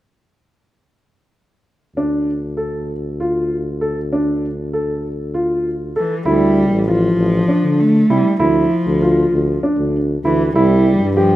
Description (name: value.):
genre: contemporary instrumental, chamber music in an uneven meter.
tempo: 196 BPM (eighths).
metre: 7/8.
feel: straight.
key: D minor.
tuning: A4 = 439 Hz.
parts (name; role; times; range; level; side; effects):
dark grand piano; arpeggios; 2.0-11.4 s; D4 to A4; -18 LUFS; right 1 dB; none.
mellow tuba; bass; 2.0-11.4 s; A1 to D3; -19 LUFS; equal; none.
dark cello; melody; 6.0-11.4 s; E3 to A3; -17 LUFS; equal; none.
room: moderate recital hall reverb, RT60 1.7 s.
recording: none.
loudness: -14 LUFS.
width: side -14 dB against mid.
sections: 2.0-6.3 A section; 6.3-11.4 B section.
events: none.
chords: 2.0 Dm; 6.3 Dmadd9; 10.5 C.